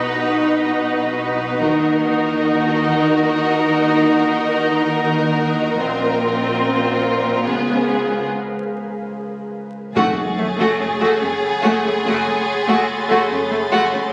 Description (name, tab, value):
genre	cinematic, suspense film score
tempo	72 BPM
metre	5/4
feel	straight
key	F# minor from 10.0 s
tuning	A4 = 440 Hz
part	rich symphonic violin section	melody	0.0-14.1 s	G#4 to B4	-26 LUFS	equal	none
part	rich chamber violin section	second line	0.0-14.0 s	A3 to F#4	-26 LUFS	equal	none
part	rich symphonic viola section	accompaniment	0.0-14.0 s	A3 to D#4	-22 LUFS	equal	none
part	ethereal airy pad	sustained chords	0.0-14.1 s	G#4 to F#5	-28 LUFS	equal	ensemble chorus, built-in reverb
part	rich chamber double bass section	bass	0.0-13.8 s	F#1 to D#2	-33 LUFS	equal	none
part	warm studio cello section	bass	0.0-14.0 s	F#2 to D#3	-30 LUFS	equal	none
part	warm sub bass	drone	0.0-14.1 s	F#1 to D#2	-36 LUFS	equal	none
part	timpani	percussion	10.0-11.2 s	F#2	-30 LUFS	equal	none
part	sub drop	sound effects	10.0-14.1 s	none	-36 LUFS	equal	none
part	rich chamber violin section	texture	10.0-14.1 s	B5 to A6	-31 LUFS	equal	none
room	wet scoring stage reverb, RT60 1.6 s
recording	recorded on a phone in the room, studio reverb, vinyl crackle, compression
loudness	-18 LUFS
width	mono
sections	0.0-10.0 A section; 10.0-14.1 B section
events	break 8.3-10.0; impact 10.0-14.1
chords	0.0 B; 1.6 D#m; 5.8 A#sus2; 7.5 C#7; 10.0 F#madd9